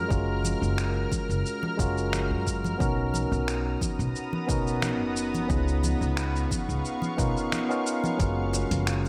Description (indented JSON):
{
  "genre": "sunset chillout",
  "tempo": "89 BPM",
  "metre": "4/4",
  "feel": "swing 53% on 16ths",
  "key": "F# major",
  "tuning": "A4 = 440 Hz",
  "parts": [
    { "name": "tine electric piano", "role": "accompaniment", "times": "0.0-9.1 s", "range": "G#3 to A#4", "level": "-32 LUFS", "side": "equal", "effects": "delay" },
    { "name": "shimmering ambient pad", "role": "sustained chords", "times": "0.0-9.1 s", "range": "B3 to E#6", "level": "-36 LUFS", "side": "equal", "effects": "chorus, built-in reverb" },
    { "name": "upright bass", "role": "bass", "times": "0.0-9.1 s", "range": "F#1 to F#2", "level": "-31 LUFS", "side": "equal", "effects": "none" },
    { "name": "dusty soul sampler-style drum kit", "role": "drums", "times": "0.1-9.1 s", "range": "cabasa, finger snaps, hi-hat", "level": "-37 LUFS", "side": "equal", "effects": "none" },
    { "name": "electronic kick drum", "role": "drums", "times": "0.1-8.3 s", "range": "none", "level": "-33 LUFS", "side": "equal", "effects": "overdrive" },
    { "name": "congas and bongos", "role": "percussion", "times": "0.4-9.1 s", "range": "none", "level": "-38 LUFS", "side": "equal", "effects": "none" }
  ],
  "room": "light reverb, digital ambience",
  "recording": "none",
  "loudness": "-27 LUFS",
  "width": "mono",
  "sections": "0.0-8.2 A section",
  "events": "none",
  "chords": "0.0 F#maj7; 2.8 Bmaj7; 5.5 C#7; 8.2 F#maj7"
}